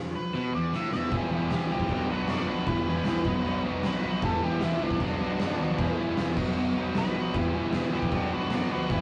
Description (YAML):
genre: garage rock duo or trio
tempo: 154 BPM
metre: 4/4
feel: straight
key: E minor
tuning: A4 = 445 Hz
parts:
  - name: octave-fuzz lead guitar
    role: melody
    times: 0.2-9.0 s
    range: D4 to E5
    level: -36 LUFS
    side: equal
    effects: distortion
  - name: crunchy overdriven guitar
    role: riff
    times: 0.3-9.0 s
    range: E2 to G4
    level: -31 LUFS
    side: equal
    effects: none
  - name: oversized low-tuned drum kit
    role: drums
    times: 0.7-9.0 s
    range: crash cymbal, kick drum, snare drum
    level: -33 LUFS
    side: equal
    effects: none
  - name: fuzz picked electric bass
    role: bass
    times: 1.1-9.0 s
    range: E1 to F#2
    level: -38 LUFS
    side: equal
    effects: overdrive
room: wet studio reverb, RT60 0.6 s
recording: rough rehearsal-room recording, warm saturation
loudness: -28 LUFS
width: mono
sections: 0.0-1.1 A section; 1.1-9.0 B section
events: lead electric guitar solo 0.0-1.1; drum fill 0.7-1.1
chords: 0.0 E5; 1.1 Em; 1.9 Bm; 2.7 Em; 3.2 B; 4.2 Em; 5.0 Bm; 5.8 Em; 6.4 B; 7.3 Em; 8.1 Bm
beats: 0.33 0.72 | 1.11 1.50 1.88 2.27 | 2.66 3.05 3.44 3.83 | 4.22 4.61 5.00 5.39 | 5.78 6.17 6.56 6.95 | 7.34 7.73 8.12 8.51 | 8.90